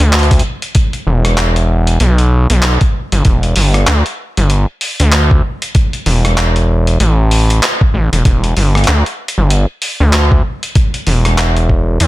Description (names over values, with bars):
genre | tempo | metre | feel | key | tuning
glitch hop | 96 BPM | 4/4 | swing 59% on 16ths | E minor | A4 = 440 Hz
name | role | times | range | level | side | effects
gritty driven synth bass | bass | 0.0-12.1 s | E1 to E2 | -10 LUFS | equal | none
boom bap sampler-style drum kit | drums | 0.0-12.1 s | handclaps, hi-hat, rim click | -17 LUFS | equal | none
electronic kick drum | drums | 0.3-11.8 s | none | -12 LUFS | equal | none
room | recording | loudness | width
little or no reverb | none | -10 LUFS | side -18 dB against mid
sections
0.0-12.1 A section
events
none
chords
none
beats
0.13 | 0.75 1.38 2.00 2.63 | 3.25 3.88 4.50 5.13 | 5.75 6.38 7.00 7.63 | 8.25 8.88 9.50 10.13 | 10.75 11.38 12.00